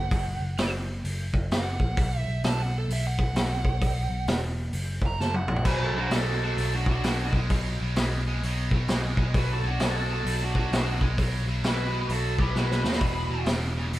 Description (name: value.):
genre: blues rock power trio and southern rock.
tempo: 130 BPM.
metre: 4/4.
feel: swing 63% on 8ths.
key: B minor.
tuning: A4 = 440 Hz.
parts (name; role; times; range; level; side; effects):
bluesy overdriven lead guitar; second line; 0.0-13.5 s; D4 to A#5; -34 LUFS; right 4 dB; distortion.
vintage muted picked electric bass; bass; 0.0-14.0 s; E1 to D#2; -28 LUFS; equal; none.
vintage drum kit; drums; 0.1-14.0 s; crash cymbal, hi-hat, kick drum, snare drum, toms; -27 LUFS; equal; none.
octave-fuzz lead guitar; melody; 5.7-13.5 s; F#4 to B4; -32 LUFS; left 1 dB; distortion.
distorted electric guitar; riff; 5.7-14.0 s; E2 to G#3; -33 LUFS; equal; overdrive.
room: light reverb.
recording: band playing live in one room.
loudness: -24 LUFS.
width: side -15 dB against mid.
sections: 0.0-5.7 A section; 5.7-14.0 B section.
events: lead electric guitar solo 0.0-5.7; drum fill 5.2-5.7, 12.6-13.0.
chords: 0.0 N.C.; 2.0 B5; 4.7 F#; 5.7 B5; 13.0 Esus2.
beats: | 0.12 0.58 1.04 1.51 | 1.97 2.43 2.89 3.35 | 3.82 4.28 4.74 5.20 | 5.66 6.12 6.58 7.04 | 7.50 7.96 8.43 8.89 | 9.35 9.81 10.27 10.72 | 11.19 11.64 12.10 12.56 | 13.02 13.48 13.94.